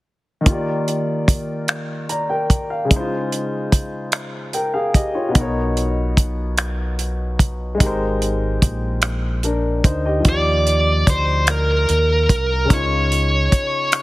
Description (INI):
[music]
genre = slow six-eight R&B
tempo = 49 BPM (dotted quarters)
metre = 6/8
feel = straight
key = Eb major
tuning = A4 = 437 Hz
[part]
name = warm concert grand piano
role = accompaniment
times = 0.4-14.0 s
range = B2 to Bb5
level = -22 LUFS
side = left 1 dB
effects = none
[part]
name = damped 70s drum kit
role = drums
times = 0.5-14.0 s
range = finger snaps, hi-hat, kick drum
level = -17 LUFS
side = equal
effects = none
[part]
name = deep dub fingered electric bass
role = bass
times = 5.4-13.6 s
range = Ab1 to Eb2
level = -21 LUFS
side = equal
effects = none
[part]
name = high-gain lead guitar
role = melody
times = 10.3-14.0 s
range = Bb4 to D5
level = -18 LUFS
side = right 1 dB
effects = distortion
[sound]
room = light reverb, studio reverb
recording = heavily compressed radio sound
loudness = -17 LUFS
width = side -18 dB against mid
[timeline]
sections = 0.5-10.3 A section; 10.3-14.0 B section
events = none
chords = 0.5 Ebmaj9; 2.9 Dbmaj9; 5.4 Bmaj9; 7.8 Abmaj9; 10.3 Ebmaj9; 12.7 Dbadd9